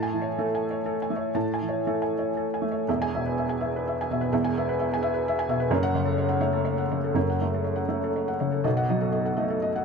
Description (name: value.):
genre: neoclassical minimalist piano.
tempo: 116-130 BPM.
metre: 3/4.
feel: rubato.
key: unclear.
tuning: A4 = 442 Hz.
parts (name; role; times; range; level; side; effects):
felt-muted upright piano; solo; 0.0-9.8 s; E1 to A5; -24 LUFS; equal; none.
room: light reverb.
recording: close, detailed microphones.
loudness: -24 LUFS.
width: side -5 dB against mid.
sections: 0.0-2.9 A section; 2.9-9.8 B section.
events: none.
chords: 0.0 Amaj7; 2.9 E; 5.7 F#m; 8.6 B7.